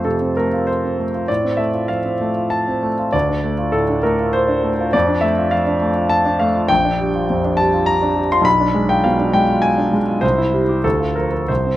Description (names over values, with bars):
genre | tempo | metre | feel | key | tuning
classical, romantic character piece for solo piano | 101 BPM | 3/4 | uneven beats, rubato | F major | A4 = 438 Hz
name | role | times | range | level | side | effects
clear concert grand piano | solo | 0.0-11.8 s | Bb1 to C6 | -15 LUFS | equal | none
room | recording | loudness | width
light reverb | close, detailed microphones | -15 LUFS | side -14 dB against mid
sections
0.0-11.8 A section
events
none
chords
0.0 F; 1.3 F/A; 3.1 Dm; 4.9 Dm/F; 6.7 Gm7/Bb; 8.4 Bdim7; 10.2 C; 10.8 Bb/D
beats
0.04 0.67 | 1.29 1.90 2.52 | 3.13 3.73 4.34 | 4.94 5.53 6.11 | 6.70 7.30 7.88 | 8.45 9.04 9.63 | 10.23 10.84 11.49